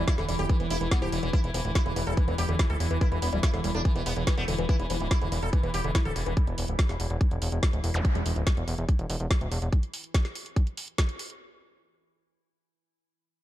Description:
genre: psychedelic trance.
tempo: 143 BPM.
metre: 4/4.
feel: straight.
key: unclear.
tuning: A4 = 440 Hz.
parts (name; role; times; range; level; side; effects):
sitar; melody; 0.0-6.3 s; E3 to A4; -34 LUFS; equal; phaser, sidechain pumping, dub echo.
evolving wavetable pad; sustained chords; 0.0-8.1 s; E3 to E4; -37 LUFS; equal; chorus, built-in reverb, sidechain pumping.
woody wave-folded pluck; riff; 0.0-6.3 s; D3 to E4; -36 LUFS; moving between left 5 dB and right 4 dB; chorus, auto-pan, sidechain pumping, dub echo.
fat analog bass; bass; 0.0-9.7 s; D1 to E1; -29 LUFS; equal; none.
drum and bass drum kit; drums; 0.1-11.4 s; hi-hat, snare drum; -34 LUFS; equal; none.
electronic kick drum; drums; 0.1-11.1 s; none; -24 LUFS; equal; none.
zap; sound effects; 7.9-8.0 s; none; -35 LUFS; equal; none.
room: digital ambience.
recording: dark, warm production.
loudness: -24 LUFS.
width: side -14 dB against mid.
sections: 0.0-11.4 A section.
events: drop 0.0-11.4.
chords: 0.0 E5.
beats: 0.07 0.49 0.91 | 1.33 1.75 2.17 2.59 | 3.01 3.43 3.85 4.27 | 4.69 5.11 5.53 5.95 | 6.37 6.79 7.21 7.63 | 8.05 8.47 8.89 9.31 | 9.73 10.14 10.56 10.98.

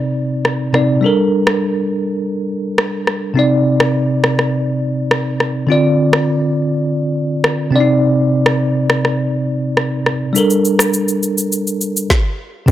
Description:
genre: afrobeats.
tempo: 103 BPM.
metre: 4/4.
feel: straight.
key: C dorian.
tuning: A4 = 441 Hz.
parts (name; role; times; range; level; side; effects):
bell-like tine electric piano; accompaniment; 0.0-12.7 s; C3 to D5; -14 LUFS; equal; medium stereo tremolo.
afro-pop drum kit; drums; 0.5-12.7 s; kick drum, rim click, shaker, snare drum; -16 LUFS; equal; none.
punchy sub bass; bass; 12.7 s; C2; -8 LUFS; equal; none.
room: digital ambience.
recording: dry, gritty hardware recording, transformer saturation.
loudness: -13 LUFS.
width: side -12 dB against mid.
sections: 0.0-12.7 A section.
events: break 0.0-3.4.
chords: 0.0 Cmadd9; 1.0 Gmadd9; 3.4 Cmadd9; 5.7 Dm7; 7.7 Cmadd9; 10.4 Gmadd9.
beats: 0.45 | 1.03 1.62 2.20 2.78 | 3.36 3.95 4.53 5.11 | 5.69 6.28 6.86 7.44 | 8.02 8.61 9.19 9.77 | 10.35 10.94 11.52 12.10 | 12.68.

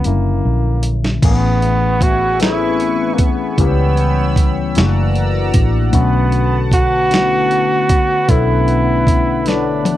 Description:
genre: slow six-eight R&B.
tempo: 51 BPM (dotted quarters).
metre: 6/8.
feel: straight.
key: B minor.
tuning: A4 = 443 Hz.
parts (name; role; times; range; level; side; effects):
breathy flugelhorn; melody; 0.0-10.0 s; A#3 to F#4; -18 LUFS; right 2 dB; slapback echo.
overdriven tine electric piano; accompaniment; 0.0-10.0 s; D3 to C#5; -20 LUFS; left 10 dB; phaser.
dusty soul sampler-style drum kit; drums; 0.0-10.0 s; crash cymbal, hi-hat, kick drum, snare drum, toms; -16 LUFS; right 1 dB; overdrive.
vintage muted fingered electric bass; bass; 0.1-10.0 s; F#1 to C#2; -17 LUFS; right 1 dB; none.
chorused pulse-width pad; sustained chords; 1.2-10.0 s; B4 to E6; -25 LUFS; right 3 dB; none.
room: little or no reverb.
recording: dry, close 1970s-style studio recording.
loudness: -12 LUFS.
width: side -13 dB against mid.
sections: 0.0-1.2 A section; 1.2-10.0 B section.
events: drum fill 0.0-1.2, 9.5-10.0.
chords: 0.0 F#7b13; 1.2 Amaj9; 3.6 C#m7b5; 4.8 F#7alt; 5.9 Bm7.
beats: 0.04 | 1.22 2.40 | 3.58 4.75 | 5.93 7.10 | 8.28 9.46.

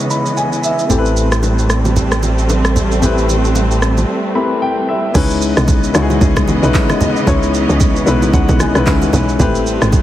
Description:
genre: amapiano.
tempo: 113 BPM.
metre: 4/4.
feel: swing 58% on 16ths.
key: C# minor.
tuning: A4 = 440 Hz.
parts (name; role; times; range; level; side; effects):
warm grand piano; accompaniment; 0.0-10.0 s; G#3 to B5; -17 LUFS; left 3 dB; low-pass filter.
dark studio string section; sustained chords; 0.0-10.0 s; C#3 to D#5; -20 LUFS; right 2 dB; sidechain pumping, low-pass filter.
deep house drum kit; drums; 0.1-10.0 s; crash cymbal, handclaps, kick drum, rim click, shaker; -17 LUFS; right 1 dB; none.
round analog bass; bass; 0.9-4.0 s; A1; -15 LUFS; right 1 dB; none.
congas and bongos; percussion; 0.9-10.0 s; none; -20 LUFS; right 2 dB; none.
tight log drum bass; bass; 5.1-10.0 s; G#1 to C#2; -16 LUFS; right 1 dB; none.
room: light reverb.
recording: heavily compressed radio sound.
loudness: -11 LUFS.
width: side -13 dB against mid.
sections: 0.0-5.1 A section; 5.1-10.0 B section.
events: grand piano fill 0.0-0.9, 4.1-5.1, 7.8-9.4; break 4.1-5.1.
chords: 0.0 C#m9; 0.9 Am9; 5.1 C#m9; 9.4 Am9.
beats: 0.37 | 0.90 1.43 1.96 2.50 | 3.02 3.56 4.09 4.62 | 5.15 5.68 6.21 6.74 | 7.27 7.80 8.34 8.87 | 9.40 9.93.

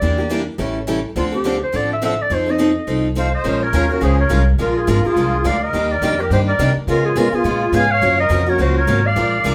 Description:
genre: acoustic string swing (jazz manouche).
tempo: 210 BPM.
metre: 4/4.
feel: swing 59% on 8ths.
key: Bb minor from 3.5 s.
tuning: A4 = 437 Hz.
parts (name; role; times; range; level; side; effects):
warm clarinet; melody; 0.0-9.5 s; F4 to Ab5; -22 LUFS; equal; none.
picked steel-string acoustic guitar; accompaniment; 0.0-9.5 s; Db3 to Bb4; -24 LUFS; equal; none.
picked steel-string acoustic guitar; accompaniment; 0.0-9.5 s; Db3 to Bb4; -29 LUFS; equal; none.
upright bass; bass; 0.0-9.5 s; Ab1 to Db3; -22 LUFS; equal; none.
musette accordion; second line; 3.2-9.5 s; F4 to F5; -25 LUFS; equal; none.
room: wet studio reverb, RT60 0.6 s.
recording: band playing live in one room.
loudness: -17 LUFS.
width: mono.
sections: 0.0-3.5 A section; 3.5-9.5 B section.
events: none.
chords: 0.0 Em7b5; 0.6 A7; 1.2 Dm7; 2.3 F7; 3.5 Bbm9; 4.6 Bb7; 5.7 Ebmaj7; 6.9 Db7; 8.0 Gbmaj7.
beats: | 0.02 0.31 0.59 0.88 | 1.16 1.45 1.74 2.02 | 2.31 2.59 2.88 3.17 | 3.45 3.74 4.02 4.31 | 4.59 4.88 5.17 5.45 | 5.74 6.02 6.31 6.59 | 6.88 7.16 7.45 7.74 | 8.02 8.31 8.59 8.88 | 9.16 9.45.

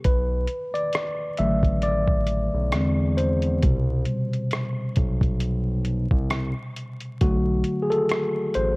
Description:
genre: lo-fi hip hop.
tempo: 67 BPM.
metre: 4/4.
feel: swing 55% on 16ths.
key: unclear.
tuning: A4 = 440 Hz.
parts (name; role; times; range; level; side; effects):
tine electric piano; accompaniment; 0.0-8.8 s; B2 to E5; -24 LUFS; equal; none.
lo-fi sampler-style drum kit; drums; 0.0-8.8 s; hi-hat, kick drum, rim click; -24 LUFS; equal; vintage 12-bit sampler grit.
smooth gliding synth bass; bass; 0.1-8.8 s; A1 to E2; -25 LUFS; equal; none.
room: little or no reverb.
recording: vinyl crackle.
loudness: -21 LUFS.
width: side -26 dB against mid.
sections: 0.0-8.8 A section.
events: tine electric piano solo 0.0-8.8.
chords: 0.0 Bm7; 2.7 Eaug7; 3.6 Gadd11; 7.2 Bm7.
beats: | 0.05 0.94 1.84 2.73 | 3.63 4.52 5.42 6.31 | 7.21 8.11.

